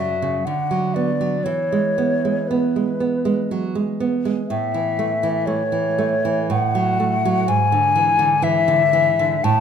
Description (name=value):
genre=romantic duo for flute and classical guitar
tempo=56-65 BPM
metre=3/4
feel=rubato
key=unclear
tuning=A4 = 440 Hz
part: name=mellow hollow silver concert flute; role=melody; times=0.0-9.6 s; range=B4 to A5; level=-19 LUFS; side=left 5 dB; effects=none
part: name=nylon-string guitar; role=accompaniment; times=0.0-9.6 s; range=F#2 to B3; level=-20 LUFS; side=right 4 dB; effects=none
room=light reverb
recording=minimal, uncompressed stereo recording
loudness=-17 LUFS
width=side -7 dB against mid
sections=0.0-9.6 A section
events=none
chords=0.5 Bm/D; 1.4 E; 4.5 A; 6.5 F#m/A; 7.5 E7/G#